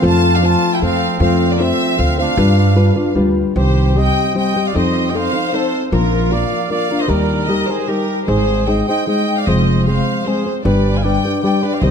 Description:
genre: mexican folk, mariachi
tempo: 153 BPM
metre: 3/4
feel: straight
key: F major, C minor from 3.6 s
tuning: A4 = 440 Hz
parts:
  - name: nylon-string guitar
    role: accompaniment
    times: 0.0-11.9 s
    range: Bb2 to C5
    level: -16 LUFS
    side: left 2 dB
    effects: none
  - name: upright bass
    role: bass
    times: 0.0-11.9 s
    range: F1 to G2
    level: -17 LUFS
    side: right 1 dB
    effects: none
  - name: clear studio violin section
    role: melody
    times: 0.1-11.9 s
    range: Bb4 to A5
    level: -20 LUFS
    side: left 1 dB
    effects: none
  - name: clear trumpet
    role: second line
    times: 0.1-11.9 s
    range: Bb3 to F5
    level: -24 LUFS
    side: right 6 dB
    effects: none
room: moderate concert hall reverb, RT60 2.0 s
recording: dark, warm production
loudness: -13 LUFS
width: side -7 dB against mid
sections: 0.0-3.6 A section; 3.6-11.9 B section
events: none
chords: 0.0 F; 2.4 G7; 3.6 Cm; 4.8 F7; 5.9 Bb; 7.1 Eb; 8.3 Ab; 9.5 Fm; 10.6 G

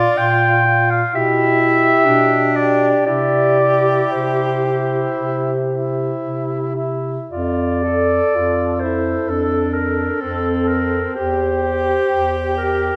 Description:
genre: classical, lyrical piece for single-reed quartet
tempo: 56-65 BPM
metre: 4/4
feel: rubato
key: F major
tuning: A4 = 440 Hz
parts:
  - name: warm clarinet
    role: melody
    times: 0.0-13.0 s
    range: A4 to G5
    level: -21 LUFS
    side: equal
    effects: none
  - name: clear alto saxophone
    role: second line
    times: 0.0-13.0 s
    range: C4 to A4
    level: -25 LUFS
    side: equal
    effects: none
  - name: mellow tenor saxophone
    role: accompaniment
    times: 0.0-13.0 s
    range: E4 to A4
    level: -25 LUFS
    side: equal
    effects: none
  - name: dark bass clarinet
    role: bass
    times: 0.0-12.9 s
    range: E2 to C3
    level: -24 LUFS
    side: equal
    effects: none
room: wet recital hall reverb, RT60 1.4 s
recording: none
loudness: -17 LUFS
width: mono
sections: 0.0-13.0 A section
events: none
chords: 0.0 Bb5; 1.1 G/B; 3.1 C; 7.3 F; 11.2 C/E

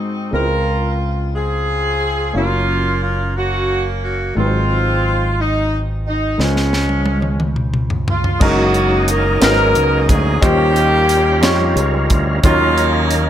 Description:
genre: slow gospel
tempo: 59 BPM (dotted quarters)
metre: 6/8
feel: straight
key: Db major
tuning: A4 = 440 Hz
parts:
  - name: bright saxophone section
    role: melody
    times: 0.0-13.3 s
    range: F3 to Bb4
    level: -18 LUFS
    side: equal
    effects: none
  - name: clear grand piano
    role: accompaniment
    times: 0.0-13.3 s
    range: Ab2 to F5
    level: -22 LUFS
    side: left 2 dB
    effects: none
  - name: fingered electric bass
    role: bass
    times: 0.3-13.3 s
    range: Gb1 to F2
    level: -19 LUFS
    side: equal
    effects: none
  - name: crisp fusion drum kit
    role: drums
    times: 6.4-13.3 s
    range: crash cymbal, hi-hat, kick drum, snare drum, toms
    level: -18 LUFS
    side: equal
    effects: none
  - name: tonewheel organ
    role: sustained chords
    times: 8.4-13.3 s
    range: Eb3 to Bb4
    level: -22 LUFS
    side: right 2 dB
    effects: slow rotary speaker, overdrive, chorus vibrato
room: light reverb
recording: none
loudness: -14 LUFS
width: side -10 dB against mid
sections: 0.0-8.4 A section; 8.4-13.3 B section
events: drum fill 6.4-8.4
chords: 0.3 Dbmaj7; 2.4 Gbmaj7; 4.4 Ab7; 6.4 Dbmaj7; 8.4 Gb69; 10.4 Eb13; 12.4 Ebm7

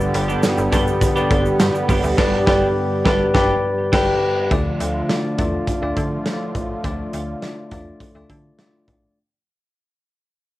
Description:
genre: 1980s-style pop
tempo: 103 BPM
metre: 4/4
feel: straight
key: unclear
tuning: A4 = 438 Hz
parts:
  - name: bell-like tine electric piano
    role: accompaniment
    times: 0.0-9.2 s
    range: G2 to G5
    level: -22 LUFS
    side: left 2 dB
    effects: cassette tape
  - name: brassy analog pad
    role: sustained chords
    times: 0.0-9.1 s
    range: D3 to G4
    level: -23 LUFS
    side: right 2 dB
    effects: chorus, cassette tape
  - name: twelve-string electric guitar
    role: riff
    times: 0.0-4.1 s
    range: G3 to G4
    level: -25 LUFS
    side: right 3 dB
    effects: lush chorus, cassette tape, tape echo
  - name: slap-like FM bass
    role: bass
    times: 0.0-9.1 s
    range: G1 to D3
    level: -25 LUFS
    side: equal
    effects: none
  - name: egg shaker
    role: percussion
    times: 0.0-2.2 s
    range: none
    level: -40 LUFS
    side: right 5 dB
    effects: none
  - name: modern studio drum kit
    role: drums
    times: 0.1-9.0 s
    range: crash cymbal, hi-hat, kick drum, snare drum, tambourine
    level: -22 LUFS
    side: equal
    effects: cassette tape
room: moderate studio reverb, RT60 0.5 s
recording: home recording on cassette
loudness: -16 LUFS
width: side -16 dB against mid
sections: 0.0-4.5 A section; 4.5-9.2 B section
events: band accent 2.2-4.5; fade-out 4.5-9.2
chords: 0.0 G; 4.5 Dm

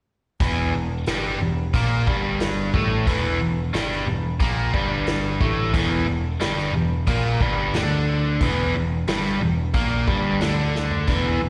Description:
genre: blues rock power trio and southern rock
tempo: 90 BPM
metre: 4/4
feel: straight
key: unclear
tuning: A4 = 441 Hz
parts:
  - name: biting overdriven guitar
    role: riff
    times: 0.4-11.5 s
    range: E2 to D4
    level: -25 LUFS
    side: equal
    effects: slapback echo
  - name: growling picked electric bass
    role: bass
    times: 0.4-11.5 s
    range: E1 to D2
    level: -27 LUFS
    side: equal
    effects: overdrive
  - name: vintage drum kit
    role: drums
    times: 0.4-11.2 s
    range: hi-hat, kick drum, snare drum, toms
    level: -28 LUFS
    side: equal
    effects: none
room: small room ambience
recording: live gig heard through the venue's PA, recital hall reverb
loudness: -22 LUFS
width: mono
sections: 0.4-11.5 A section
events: drum fill 10.7-11.1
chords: 0.4 Em7b5

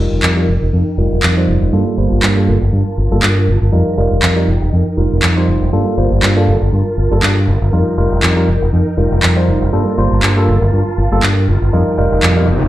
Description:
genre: filtered disco house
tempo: 120 BPM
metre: 4/4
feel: swing 55% on 16ths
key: G minor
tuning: A4 = 439 Hz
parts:
  - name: tine electric piano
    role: accompaniment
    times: 0.0-12.5 s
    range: G3 to C5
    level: -17 LUFS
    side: right 1 dB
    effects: phaser, vintage 12-bit sampler grit, low-pass filter
  - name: phased string machine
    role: sustained chords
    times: 0.0-12.7 s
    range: Eb4 to A5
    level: -23 LUFS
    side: equal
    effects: ensemble chorus, phaser, low-pass filter
  - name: modern bright fingered electric bass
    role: bass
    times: 0.0-12.7 s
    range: F1 to G2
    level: -13 LUFS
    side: equal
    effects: low-pass filter
  - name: tube shaker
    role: percussion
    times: 0.1-12.7 s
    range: none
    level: barely audible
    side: none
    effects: none
  - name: electronic handclaps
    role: drums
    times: 0.2-12.3 s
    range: none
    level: -17 LUFS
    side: equal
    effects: none
  - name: riser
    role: sound effects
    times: 11.9-12.7 s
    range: none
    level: -22 LUFS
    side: left 1 dB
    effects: none
room: light reverb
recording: played on a big sound system in a bare room, large studio reverb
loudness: -11 LUFS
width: side -14 dB against mid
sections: 0.0-12.7 A section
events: filter sweep 0.0-12.7; riser 11.9-12.7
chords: 0.0 F9sus4; 1.7 Gm9; 3.7 F9sus4; 5.7 Gm9; 7.7 F9sus4; 9.7 Gm9; 11.7 F9sus4

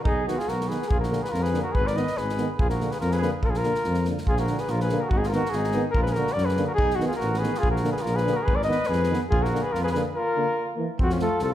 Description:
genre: balkan folk, Balkan brass band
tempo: 143 BPM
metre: 2/4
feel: swing 56% on 16ths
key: Bb phrygian dominant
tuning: A4 = 440 Hz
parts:
  - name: mellow flugelhorn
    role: melody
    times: 0.0-11.5 s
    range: F4 to Eb5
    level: -27 LUFS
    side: left 2 dB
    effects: none
  - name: mellow trumpet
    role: second line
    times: 0.0-11.5 s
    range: C4 to Cb5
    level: -32 LUFS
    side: right 3 dB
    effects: none
  - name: mellow tuba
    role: bass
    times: 0.1-11.5 s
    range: Ab1 to Gb2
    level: -28 LUFS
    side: equal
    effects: none
  - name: natural country drum kit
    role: percussion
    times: 0.1-11.5 s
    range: kick drum, snare drum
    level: -28 LUFS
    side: equal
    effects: none
  - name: mellow euphonium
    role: accompaniment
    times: 0.3-11.3 s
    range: D3 to F3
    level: -34 LUFS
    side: right 4 dB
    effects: none
  - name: warm euphonium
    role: accompaniment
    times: 0.3-11.3 s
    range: A3 to Cb4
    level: -34 LUFS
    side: left 2 dB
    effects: none
room: moderate recital hall reverb, RT60 1.4 s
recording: heard from further back in the room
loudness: -22 LUFS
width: side -12 dB against mid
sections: 0.0-4.3 A section; 4.3-11.0 A section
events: break 10.2-11.0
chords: 0.1 B; 0.9 Bb; 1.7 Abm; 2.6 Bb; 5.1 Abm; 6.0 Bb; 6.8 B; 7.6 Bb; 8.5 Abm; 9.3 Bb; 10.6 Bb5; 11.0 F

